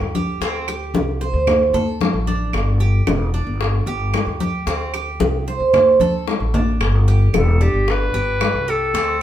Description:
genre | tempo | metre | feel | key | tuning
latin, Cuban son and guajira | 112 BPM | 4/4 | straight | G major | A4 = 440 Hz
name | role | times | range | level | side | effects
Cuban tres | arpeggios | 0.0-9.2 s | C4 to C5 | -21 LUFS | right 4 dB | none
upright bass | bass | 0.0-9.2 s | E1 to D2 | -20 LUFS | equal | none
congas | percussion | 0.1-9.2 s | none | -23 LUFS | left 2 dB | none
bongos | percussion | 0.4-9.2 s | none | -25 LUFS | left 4 dB | none
claves | percussion | 0.7-8.7 s | none | -30 LUFS | right 4 dB | none
clear clarinet | melody | 7.4-9.2 s | G4 to B4 | -20 LUFS | left 1 dB | none
room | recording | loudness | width
wet stone room reverb, RT60 0.9 s | band playing live in one room | -16 LUFS | side -11 dB against mid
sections
0.0-6.8 A section; 6.8-9.2 B section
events
drum fill 6.0-6.8; clarinet solo 6.8-9.2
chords
0.4 D7sus4; 2.5 G5; 4.7 D7sus4; 6.8 G

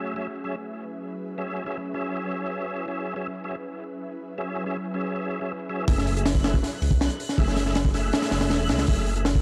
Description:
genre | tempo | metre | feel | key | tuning
drum and bass, jungle | 160 BPM | 4/4 | straight | F# minor | A4 = 441 Hz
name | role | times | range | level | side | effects
ethereal airy pad | sustained chords | 0.0-9.4 s | F#3 to E5 | -37 LUFS | equal | ensemble chorus, built-in reverb
tonewheel organ | stabs | 0.0-9.3 s | F#3 to E5 | -34 LUFS | equal | chorus vibrato, fast rotary speaker, dub echo
detuned saw bass | bass | 5.9-9.4 s | E1 to C#2 | -28 LUFS | equal | none
crunchy breakbeat drum kit | drums | 5.9-9.4 s | hi-hat, kick drum, snare drum | -26 LUFS | equal | none
twinkling granular texture | texture | 6.2-9.4 s | F#6 | -43 LUFS | equal | built-in reverb
room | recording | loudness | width
light reverb, studio reverb | dry, gritty hardware recording | -26 LUFS | mono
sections
0.0-5.9 A section; 5.9-9.4 B section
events
drop 5.9-9.4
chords
0.0 E6/F#; 5.9 F#m9

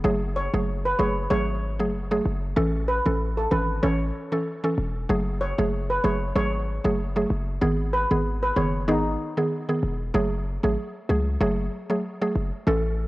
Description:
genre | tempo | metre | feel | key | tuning
dancehall | 95 BPM | 4/4 | swing 56% on 16ths | F# dorian | A4 = 441 Hz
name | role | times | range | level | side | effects
mallet-like synth pluck | accompaniment | 0.0-12.8 s | D#3 to A4 | -25 LUFS | right 1 dB | chorus, cassette tape
hard-hitting 808-style bass | bass | 0.0-13.1 s | E1 to C#2 | -26 LUFS | equal | none
steel pan | melody | 0.4-9.3 s | D#4 to C#5 | -27 LUFS | equal | cassette tape, tape echo
room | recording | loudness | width
light reverb | home recording on cassette | -22 LUFS | side -18 dB against mid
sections
0.0-10.1 A section; 10.1-13.1 B section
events
none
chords
0.0 F#madd9; 2.6 A; 5.1 F#madd9; 7.6 G#m; 10.1 F#madd9

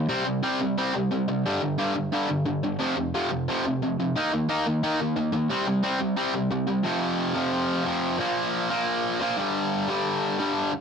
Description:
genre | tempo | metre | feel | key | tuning
punk | 178 BPM | 4/4 | straight | unclear | A4 = 439 Hz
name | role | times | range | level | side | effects
distorted electric guitar | solo | 0.0-10.7 s | F2 to Eb4 | -23 LUFS | equal | overdrive
room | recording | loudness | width
light reverb | none | -23 LUFS | side -6 dB against mid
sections
0.0-6.8 A section; 6.8-10.8 B section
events
none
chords
0.1 C5; 1.5 G5; 2.8 F5; 4.2 Eb5; 5.5 C5; 6.8 F5; 8.2 Bb5; 9.4 G5

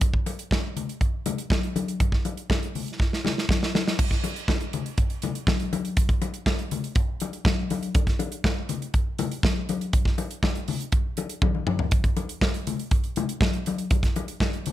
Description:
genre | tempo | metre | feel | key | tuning
disco | 121 BPM | 4/4 | straight | none | none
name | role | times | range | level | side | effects
modern studio drum kit | drums | 0.0-14.7 s | crash cymbal, hi-hat, kick drum, snare drum, toms | -24 LUFS | right 1 dB | none
congas | percussion | 0.0-14.7 s | none | -30 LUFS | left 6 dB | none
room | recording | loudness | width
little or no reverb | none | -23 LUFS | side -13 dB against mid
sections
0.0-4.0 A section; 4.0-14.7 B section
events
drum fill 3.0-4.0, 11.4-11.9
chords
none

